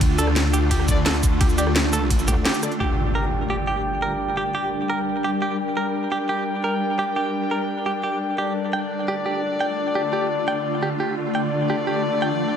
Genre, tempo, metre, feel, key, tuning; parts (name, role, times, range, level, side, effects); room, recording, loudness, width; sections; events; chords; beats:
dark technical drum and bass; 172 BPM; 4/4; straight; G minor; A4 = 440 Hz
swarming drone; sustained chords; 0.0-12.6 s; D3 to Bb4; -25 LUFS; left 1 dB; built-in reverb, sidechain pumping
snarling distorted saw bass; bass; 0.0-2.3 s; D2; -22 LUFS; equal; distortion, overdrive, sidechain pumping
drum and bass drum kit; drums; 0.0-2.8 s; cabasa, hi-hat, ride cymbal, rim click, snare drum; -24 LUFS; equal; low-pass filter on hats, low-pass filter on perc, low-pass filter on snare, low-pass filter on cymbals, low-pass filter on room
electronic kick drum; drums; 0.0-2.3 s; -21 LUFS; equal
direct-recorded clean electric guitar; arpeggios; 0.2-12.3 s; G4 to G5; -27 LUFS; right 3 dB; sidechain pumping, digital delay
clear brass ensemble; stabs; 0.2-12.6 s; D4 to G5; -26 LUFS; left 1 dB; low-pass filter, digital delay
metallic wobble bass; bass; 2.3-2.5 s; D2; -26 LUFS; equal; chorus
impact and riser; sound effects; 2.8-4.2, 11.6-12.6 s; -28 LUFS; equal
moderate digital room reverb, RT60 0.9 s; -20 LUFS; side -8 dB against mid
0.0-2.8 A section; 2.8-12.6 B section
drop 0.0-2.8; band accent 2.5; impact 2.8-4.2; filter sweep on brass ensemble 2.8-12.6
0.0 Dm; 2.8 Gm; 8.4 Dm
| 0.01 0.36 0.71 1.06 | 1.41 1.76 2.10 2.45 | 2.80 3.15 3.50 3.85 | 4.20 4.55 4.89 5.24 | 5.59 5.94 6.29 6.64 | 6.99 7.34 7.69 8.04 | 8.38 8.73 9.08 9.43 | 9.78 10.13 10.48 10.83 | 11.18 11.52 11.87 12.22